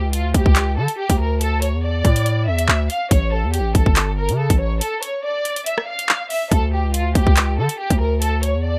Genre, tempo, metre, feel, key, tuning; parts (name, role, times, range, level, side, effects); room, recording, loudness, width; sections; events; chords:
hip hop, drill; 141 BPM; 4/4; half-time; D harmonic minor; A4 = 440 Hz
rich studio violin section; melody; 0.0-8.8 s; F4 to F5; -26 LUFS; equal; low-pass filter
distorted 808-style bass; bass; 0.0-8.8 s; G1 to D3; -22 LUFS; equal; distortion
drill drum kit; drums; 0.1-8.5 s; handclaps, hi-hat, kick drum, rim click; -20 LUFS; equal
little or no reverb; -19 LUFS; mono
0.0-8.8 A section
break 4.8-6.5
0.0 D5; 3.1 N.C.; 6.5 D5